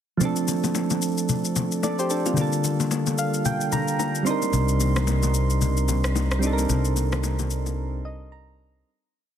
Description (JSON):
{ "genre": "amapiano", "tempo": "111 BPM", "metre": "4/4", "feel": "swing 58% on 16ths", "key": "C dorian", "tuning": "A4 = 440 Hz", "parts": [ { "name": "soft electric-piano-like synth keys", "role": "accompaniment", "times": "0.2-8.9 s", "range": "D3 to C6", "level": "-24 LUFS", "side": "right 2 dB", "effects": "chorus" }, { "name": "electronic shaker and rim click", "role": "drums", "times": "0.2-7.8 s", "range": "none", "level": "-31 LUFS", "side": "left 4 dB", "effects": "none" }, { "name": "congas and bongos", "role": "percussion", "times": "0.2-7.8 s", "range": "none", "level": "-30 LUFS", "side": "left 8 dB", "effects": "none" }, { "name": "fingered electric bass", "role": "bass", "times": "4.5-8.8 s", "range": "C2", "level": "-23 LUFS", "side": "equal", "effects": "none" } ], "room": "light reverb", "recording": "dense, heavily limited modern master", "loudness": "-21 LUFS", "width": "side -9 dB against mid", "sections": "0.2-8.9 breakdown", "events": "synth keys fill 2.9-4.5, 7.8-8.9; fade-out 6.7-8.9; break 7.8-8.9", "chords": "0.2 Dm7; 2.4 Gm9/D; 4.3 Cm9" }